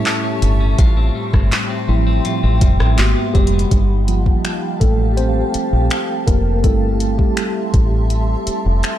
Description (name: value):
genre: contemporary R&B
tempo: 82 BPM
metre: 4/4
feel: straight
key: G dorian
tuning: A4 = 440 Hz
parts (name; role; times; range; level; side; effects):
- mellow tine electric piano; accompaniment; 0.0-9.0 s; F3 to E5; -22 LUFS; right 1 dB; medium stereo tremolo, tape echo
- granular cloud pad; sustained chords; 0.0-9.0 s; G4 to C#6; -24 LUFS; equal; built-in reverb
- clean electric guitar; arpeggios; 0.0-3.8 s; Ab2 to F4; -24 LUFS; left 5 dB; tape echo
- deep dub fingered electric bass; bass; 0.0-8.8 s; F1 to Bb1; -16 LUFS; equal; none
- smooth R&B drum kit; drums; 0.1-9.0 s; finger snaps, handclaps, hi-hat, kick drum, rim click; -17 LUFS; equal; none
room: little or no reverb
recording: echo-heavy mix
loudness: -14 LUFS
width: side -12 dB against mid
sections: 0.0-3.7 A section; 3.7-9.0 B section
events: tine electric piano solo 0.0-3.7, 3.7-9.0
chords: 0.0 A7; 0.8 Fmaj9; 3.0 Abm7; 3.7 Gm9; 6.6 Am7/G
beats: 0.06 | 0.79 1.52 2.25 2.98 | 3.71 4.45 5.18 5.91 | 6.64 7.37 8.10 8.84